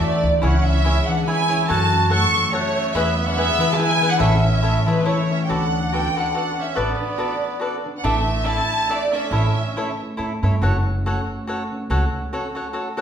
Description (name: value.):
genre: mexican folk, mariachi.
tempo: 142 BPM.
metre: 3/4.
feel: swing 54% on 8ths, rubato.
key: A major, D major from 5.5 s.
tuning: A4 = 439 Hz.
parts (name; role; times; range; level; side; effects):
dark studio violin section; melody; 0.0-10.0 s; B4 to C#6; -22 LUFS; right 1 dB; none.
clear trumpet; second line; 0.0-10.0 s; G#3 to A4; -29 LUFS; right 4 dB; none.
cavaquinho; accompaniment; 0.0-13.0 s; D4 to F#5; -25 LUFS; equal; none.
concert harp; arpeggios; 0.0-13.0 s; E3 to F#4; -26 LUFS; left 3 dB; none.
upright bass; bass; 0.0-12.0 s; F#1 to A2; -22 LUFS; right 1 dB; none.
room: wet recital hall reverb, RT60 1.2 s.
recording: recorded in a church or concert hall.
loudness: -18 LUFS.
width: side -8 dB against mid.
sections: 0.0-5.5 A section; 5.5-13.0 B section.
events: none.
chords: 0.4 C#m; 1.7 F#m; 2.9 E; 4.2 A; 5.5 D6; 8.0 Asus4; 9.3 A; 10.6 F#m.